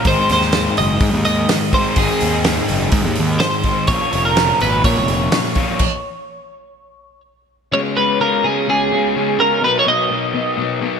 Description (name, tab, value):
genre	indie rock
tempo	125 BPM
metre	4/4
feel	straight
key	unclear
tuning	A4 = 440 Hz
part	twelve-string electric guitar	melody	0.0-10.8 s	Ab4 to Eb5	-18 LUFS	right 2 dB	lush chorus, digital delay
part	crunchy overdriven guitar	riff	0.0-11.0 s	Ab2 to F4	-21 LUFS	left 7 dB	none
part	thick fuzz guitar	riff	0.0-5.8 s	Ab2 to F4	-24 LUFS	right 7 dB	distortion, ensemble chorus
part	loose indie drum kit	drums	0.0-5.9 s	crash cymbal, hi-hat, kick drum, snare drum	-20 LUFS	equal	gated reverb
part	fuzz picked electric bass	bass	0.1-5.3 s	F1 to Bb2	-20 LUFS	equal	overdrive
part	mellow tonewheel organ	sustained chords	7.7-11.0 s	Cb4 to D#5	-27 LUFS	right 2 dB	slow rotary speaker
room	moderate lush hall reverb, RT60 1.8 s, studio ambience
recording	bright 1980s-style digital production, faint mains hum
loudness	-14 LUFS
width	side -6 dB against mid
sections	0.0-7.7 A section; 7.7-11.0 B section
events	stop 5.8-7.7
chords	0.1 Ab; 3.9 Bbm; 7.7 Db7sus4; 9.6 Bmaj7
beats	| 0.06 0.54 1.02 1.50 | 1.98 2.46 2.94 3.41 | 3.89 4.37 4.85 5.33 | 5.81 6.29 6.77 7.25 | 7.72 8.20 8.68 9.15 | 9.63 10.10 10.58